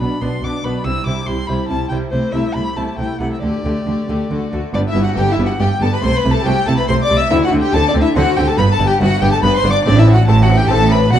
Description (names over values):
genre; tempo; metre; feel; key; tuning
classical, baroque-style concerto movement with solo episodes; 140 BPM; 3/4; straight; G major; A4 = 441 Hz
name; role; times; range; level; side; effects
rich chamber violin section; melody; 0.0-11.2 s; A4 to E6; -28 LUFS; left 6 dB; none
warm violin; melody; 0.0-11.2 s; C5 to E6; -22 LUFS; left 2 dB; none
warm symphonic violin section; second line; 0.0-11.2 s; D4 to E5; -20 LUFS; left 3 dB; none
lute; accompaniment; 0.0-11.2 s; G2 to D5; -25 LUFS; equal; none
rich chamber viola section; accompaniment; 0.0-11.2 s; G3 to D4; -24 LUFS; equal; none
rich symphonic cello section; bass; 0.0-11.2 s; G2 to D3; -20 LUFS; right 2 dB; none
warm chamber double bass section; bass; 0.0-11.2 s; G1 to D2; -18 LUFS; right 2 dB; none
room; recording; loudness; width
moderate recital hall reverb, RT60 1.3 s; dark, warm production; -13 LUFS; side -10 dB against mid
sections
0.0-4.7 A section; 4.7-11.2 B section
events
none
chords
0.0 Bm; 0.8 C; 2.1 Am/C; 3.4 Dsus4; 4.3 D; 4.7 G; 6.0 Am/C; 7.3 D9; 8.6 G; 9.9 D5/A